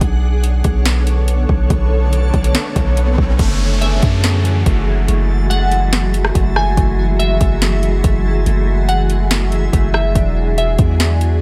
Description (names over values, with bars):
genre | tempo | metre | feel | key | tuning
hip hop, atmospheric cloud-rap | 142 BPM | 4/4 | half-time | F# minor | A4 = 440 Hz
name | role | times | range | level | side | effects
granular cloud pad | sustained chords | 0.0-11.4 s | D3 to C#5 | -25 LUFS | equal | built-in reverb, sidechain pumping
long sustained 808-style bass | bass | 0.0-11.4 s | E1 to F#2 | -18 LUFS | equal | none
smooth R&B drum kit | drums | 0.0-11.3 s | hi-hat, kick drum, rim click, snare drum | -20 LUFS | equal | overdrive
riser and downlifter | sound effects | 1.8-6.8 s | none | -31 LUFS | equal | none
backwards swelling texture | texture | 0.0-11.4 s | G#3 to A6 | -32 LUFS | equal | built-in reverb
mellow electric guitar | arpeggios | 3.4-11.4 s | A3 to G#4 | -29 LUFS | equal | analog chorus, low-pass filter, delay
glassy wavetable pluck | melody | 3.8-11.0 s | E5 to G#5 | -24 LUFS | equal | chorus, low-pass filter, delay
room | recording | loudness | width
digital ambience | none | -15 LUFS | mono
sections
0.0-3.4 A section; 3.4-11.4 B section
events
riser 1.8-3.4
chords
0.0 Bm9; 3.4 F#m9; 10.2 E9